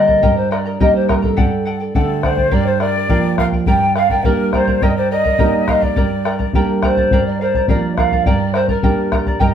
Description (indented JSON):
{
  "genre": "andean folk, Andean ensemble",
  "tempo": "104 BPM",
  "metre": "2/4",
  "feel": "straight",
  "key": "G minor",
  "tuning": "A4 = 440 Hz",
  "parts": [
    { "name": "mellow hollow polished pan flute", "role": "melody", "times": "0.0-9.5 s", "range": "A4 to G5", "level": "-18 LUFS", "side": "equal", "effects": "plate reverb" },
    { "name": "charango", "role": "accompaniment", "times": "0.0-9.5 s", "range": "G4 to Bb5", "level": "-23 LUFS", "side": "equal", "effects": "none" },
    { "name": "nylon-string guitar", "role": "accompaniment", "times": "0.0-9.5 s", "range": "G2 to Eb4", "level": "-19 LUFS", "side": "right 4 dB", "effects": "none" },
    { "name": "bombo", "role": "percussion", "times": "0.1-9.5 s", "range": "none", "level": "-18 LUFS", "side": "left 2 dB", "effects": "none" },
    { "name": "breathy mellow quena", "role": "second line", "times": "2.0-6.5 s", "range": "A4 to G5", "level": "-21 LUFS", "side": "left 2 dB", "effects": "none" }
  ],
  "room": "wet studio reverb, RT60 0.6 s",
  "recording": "heard from further back in the room",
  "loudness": "-13 LUFS",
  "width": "side -8 dB against mid",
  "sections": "0.0-7.1 A section; 7.1-9.5 A section",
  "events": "none",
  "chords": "0.2 Eb/G; 1.4 D/G; 2.5 Bb/G; 3.7 Gm; 4.8 Eb/G; 6.0 Gm; 7.1 Bb/G; 8.3 Gm",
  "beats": "| 0.23 0.81 | 1.38 1.96 | 2.53 3.11 | 3.68 4.25 | 4.83 5.40 | 5.98 6.55 | 7.12 7.69 | 8.27 8.84 | 9.41"
}